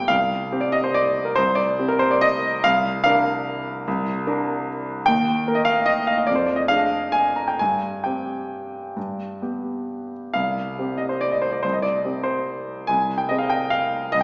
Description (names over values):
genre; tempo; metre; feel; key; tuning
classical, piano waltz; 126-156 BPM; 3/4; rubato; C minor; A4 = 440 Hz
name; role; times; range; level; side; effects
clear concert grand piano; solo; 0.0-14.2 s; G1 to Bb5; -22 LUFS; equal; none
room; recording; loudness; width
wet recital hall reverb, RT60 1.6 s; recorded in a church or concert hall, small speaker sound; -22 LUFS; mono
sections
0.1-14.2 A section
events
none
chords
0.1 Cm; 2.6 Bb/C; 5.1 Eb; 6.3 Ddim/F; 7.6 C5/G; 9.0 G; 10.3 C5; 12.9 Fm/C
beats
| 0.10 0.53 0.96 | 1.38 1.79 2.22 | 2.64 3.04 3.46 | 3.86 4.26 4.67 | 5.07 5.46 5.88 | 6.28 6.69 7.13 | 7.59 8.04 8.50 | 8.96 9.41 9.89 | 10.35 10.78 11.21 | 11.64 12.04 12.47 | 12.88 13.29 13.72 | 14.12